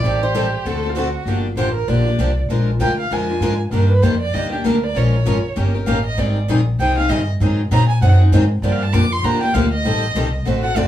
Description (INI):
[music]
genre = acoustic string swing (jazz manouche)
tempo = 196 BPM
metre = 4/4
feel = swing 59% on 8ths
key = G minor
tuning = A4 = 440 Hz
[part]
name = picked swing-style acoustic guitar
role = melody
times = 0.0-1.1 s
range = C5 to D5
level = -24 LUFS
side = right 2 dB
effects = none
[part]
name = warm violin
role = second line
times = 0.0-10.9 s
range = F4 to D6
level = -23 LUFS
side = right 3 dB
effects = none
[part]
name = picked steel-string acoustic guitar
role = accompaniment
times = 0.0-10.9 s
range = D3 to Bb4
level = -22 LUFS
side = left 4 dB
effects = none
[part]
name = upright bass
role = bass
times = 0.0-10.9 s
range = F#1 to Bb2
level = -18 LUFS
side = equal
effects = none
[part]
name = picked swing-style acoustic guitar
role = accompaniment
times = 0.1-10.9 s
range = D3 to Bb4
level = -28 LUFS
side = right 6 dB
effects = none
[sound]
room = moderate club reverb, RT60 0.5 s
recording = small room ambience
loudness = -15 LUFS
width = side -12 dB against mid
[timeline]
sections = 0.0-1.3 A section; 1.3-10.9 B section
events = violin solo 1.3-10.9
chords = 0.0 Am7b5; 0.7 D7; 1.3 Gm7; 2.5 Bb7; 3.7 Ebmaj7; 5.0 Bbm7; 5.6 Eb7; 6.2 Abmaj7; 7.4 Ab9; 8.6 Gm7; 9.8 Am7b5